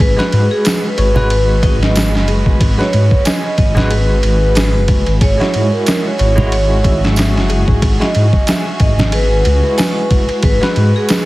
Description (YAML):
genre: trip hop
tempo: 92 BPM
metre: 4/4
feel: swing 56% on 16ths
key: G# minor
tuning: A4 = 441 Hz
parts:
  - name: vibraphone with hard mallets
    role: melody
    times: 0.0-11.2 s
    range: G#4 to E5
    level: -19 LUFS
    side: right 1 dB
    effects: tape echo
  - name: warm studio violin section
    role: sustained chords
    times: 0.0-11.3 s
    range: G#3 to B4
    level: -27 LUFS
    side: equal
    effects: none
  - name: flamenco guitar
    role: arpeggios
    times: 0.0-10.7 s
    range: G#4 to G#5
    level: -28 LUFS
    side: left 2 dB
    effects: tape echo
  - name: dark detuned saw bass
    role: bass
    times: 0.0-10.9 s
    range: F#1 to G#2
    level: -14 LUFS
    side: equal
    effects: none
  - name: trip hop sampler-style drum kit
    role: drums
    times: 0.0-11.3 s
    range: hi-hat, kick drum, ride cymbal, snare drum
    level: -15 LUFS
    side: equal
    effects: overdrive
  - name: bell-like tine electric piano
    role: accompaniment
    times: 0.2-11.3 s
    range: G#3 to B4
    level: -21 LUFS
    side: equal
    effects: tremolo, vintage 12-bit sampler grit
  - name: tambourine and congas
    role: percussion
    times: 0.7-11.2 s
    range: none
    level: -20 LUFS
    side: right 1 dB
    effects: none
room: small room ambience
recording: heavily compressed radio sound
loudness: -11 LUFS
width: side -18 dB against mid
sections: 0.0-11.3 A section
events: none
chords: 0.0 G#m7; 5.2 Eadd9; 10.4 G#m7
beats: | 0.00 0.65 1.30 1.95 | 2.61 3.26 3.91 4.56 | 5.21 5.87 6.52 7.17 | 7.82 8.47 9.13 9.78 | 10.43 11.08